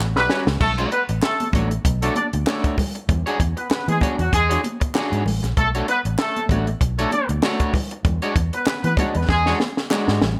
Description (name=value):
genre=funk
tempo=97 BPM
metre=4/4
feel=swing 56% on 16ths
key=B dorian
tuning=A4 = 439 Hz
part: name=electric guitar at the edge of break-up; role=accompaniment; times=0.0-10.3 s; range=G3 to C#5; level=-28 LUFS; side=equal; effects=lush chorus
part: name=string machine, violins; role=sustained chords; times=0.0-0.6 s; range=G3 to F#4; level=-41 LUFS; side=equal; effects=none
part: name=vintage muted fingered electric bass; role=bass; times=0.0-10.3 s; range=A1 to E3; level=-25 LUFS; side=equal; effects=none
part: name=mellow horn section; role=second line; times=0.2-9.5 s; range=F#3 to D5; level=-25 LUFS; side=equal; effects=none
part: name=compact cocktail drum kit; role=drums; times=0.2-10.4 s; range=crash cymbal, hi-hat, kick drum, snare drum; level=-25 LUFS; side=equal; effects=none
part: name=congas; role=percussion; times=0.6-10.4 s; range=none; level=-33 LUFS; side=equal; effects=none
part: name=group handclap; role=percussion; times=1.2-10.1 s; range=none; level=-34 LUFS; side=equal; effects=none
room=little or no reverb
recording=none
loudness=-21 LUFS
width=mono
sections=0.6-10.4 A section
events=drum fill 0.0-0.6, 9.3-10.4; band accent 0.0-0.6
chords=0.0 A13; 0.6 Bm9; 3.1 E13; 5.6 Bm9; 8.0 E13